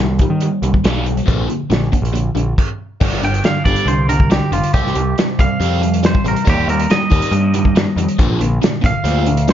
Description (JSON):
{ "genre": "indie rock", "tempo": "139 BPM", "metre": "4/4", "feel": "straight", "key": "G minor", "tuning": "A4 = 438 Hz", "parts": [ { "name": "biting overdriven guitar", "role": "riff", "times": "0.0-9.5 s", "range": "G2 to C4", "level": "-19 LUFS", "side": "equal", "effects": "phaser" }, { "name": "growling picked electric bass", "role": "bass", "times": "0.0-9.5 s", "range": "F1 to Eb3", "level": "-18 LUFS", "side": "equal", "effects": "overdrive" }, { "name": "loose indie drum kit", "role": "drums", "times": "0.2-9.5 s", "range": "crash cymbal, hi-hat, kick drum, snare drum", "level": "-17 LUFS", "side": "equal", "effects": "none" }, { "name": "twangy electric guitar", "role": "melody", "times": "3.2-9.5 s", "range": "F4 to G5", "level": "-21 LUFS", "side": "right 3 dB", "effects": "spring reverb, plate reverb" } ], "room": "light reverb", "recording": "dark, warm production, nothing above 7.5 kHz", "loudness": "-13 LUFS", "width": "side -10 dB against mid", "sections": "0.0-3.0 A section; 3.0-9.5 B section", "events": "clean electric guitar solo 3.0-9.5", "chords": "0.0 Eb6; 1.3 Bb; 3.0 G5; 4.7 C5; 6.5 Eb; 8.2 Bb" }